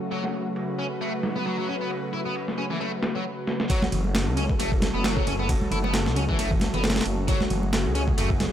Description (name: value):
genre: breakbeat, breaks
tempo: 134 BPM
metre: 4/4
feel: swing 56% on 16ths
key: F# minor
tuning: A4 = 442 Hz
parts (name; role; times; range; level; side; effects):
- lush unison pad; sustained chords; 0.0-8.5 s; C#3 to B4; -30 LUFS; equal; chorus, sidechain pumping
- distorted electric guitar; riff; 0.1-8.3 s; E3 to E4; -31 LUFS; left 1 dB; distortion, dub echo
- breakbeat sampler-style drum kit; drums; 0.1-8.5 s; kick drum, ride cymbal, snare drum; -27 LUFS; equal; overdrive, low-pass filter on cymbals, low-pass filter on snare, low-pass filter on kick, low-pass filter on room
- congas; percussion; 3.8-8.5 s; none; -31 LUFS; right 2 dB; none
- phased detuned saw bass; bass; 3.9-8.5 s; F#1 to C#2; -27 LUFS; equal; phaser
room: light reverb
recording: none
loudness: -23 LUFS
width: side -10 dB against mid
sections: 0.0-3.7 A section; 3.7-8.5 B section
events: drum fill 3.5; drop 3.7-8.5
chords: 0.0 F#m